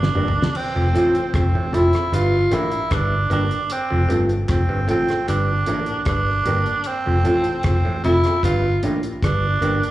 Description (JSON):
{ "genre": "roots reggae", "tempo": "76 BPM", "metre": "4/4", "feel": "straight", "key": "F major", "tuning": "A4 = 441 Hz", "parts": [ { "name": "growling tenor saxophone", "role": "melody", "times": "0.0-9.9 s", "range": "C4 to F4", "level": "-22 LUFS", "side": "right 2 dB", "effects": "tape echo, slapback echo" }, { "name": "dark upright piano", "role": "stabs", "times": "0.0-9.8 s", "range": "A3 to D5", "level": "-29 LUFS", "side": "left 2 dB", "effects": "slapback echo" }, { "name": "vintage muted fingered electric bass", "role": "bass", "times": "0.0-9.8 s", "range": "F1 to A1", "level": "-21 LUFS", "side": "equal", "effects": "none" }, { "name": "damped 70s drum kit", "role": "drums", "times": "0.0-9.9 s", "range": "crash cymbal, hi-hat, kick drum, rim click, snare drum, toms", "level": "-25 LUFS", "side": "equal", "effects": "none" }, { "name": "mellow electric guitar", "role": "accompaniment", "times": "0.1-9.8 s", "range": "A3 to C5", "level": "-24 LUFS", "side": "right 1 dB", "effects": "tape echo, slapback echo" }, { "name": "bright clav", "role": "riff", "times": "0.2-9.7 s", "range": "F2 to A2", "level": "-27 LUFS", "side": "left 2 dB", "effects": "slapback echo" } ], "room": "light reverb", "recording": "live gig heard through the venue's PA, club reverb, small room ambience", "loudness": "-17 LUFS", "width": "side -15 dB against mid", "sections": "0.5-9.9 A section", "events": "drum fill 0.0-0.5", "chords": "0.0 Gm; 0.5 F; 2.1 Gm; 3.7 F; 5.3 Gm; 6.9 F; 8.4 Gm" }